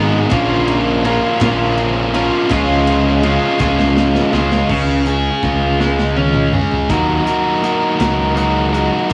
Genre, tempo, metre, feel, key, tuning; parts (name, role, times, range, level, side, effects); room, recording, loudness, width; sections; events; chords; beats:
indie rock; 55 BPM (dotted quarters); 6/8; straight; A4 = 440 Hz
biting overdriven guitar; riff; 0.0-9.1 s; G#2 to A#4; -18 LUFS; equal
twelve-string electric guitar; riff; 0.0-9.1 s; F#3 to A#4; -25 LUFS; equal
fuzz picked electric bass; bass; 0.0-9.1 s; G#1 to D#2; -21 LUFS; equal; overdrive
big rock drum kit; drums; 0.3-9.1 s; crash cymbal, hi-hat, kick drum, ride cymbal, snare drum, toms; -26 LUFS; equal; cassette tape
group handclap; percussion; 0.3-9.1 s; -38 LUFS; equal
light reverb; home recording on cassette, small room ambience; -15 LUFS; mono
0.0-4.7 A section; 4.7-6.9 B section; 6.9-9.1 C section
drum fill 3.6-4.7, 5.8-6.9
0.3 A#m; 2.5 C#; 6.9 D#m
| 0.32 1.41 | 2.50 3.60 | 4.70 5.79 | 6.89 8.00 | 9.10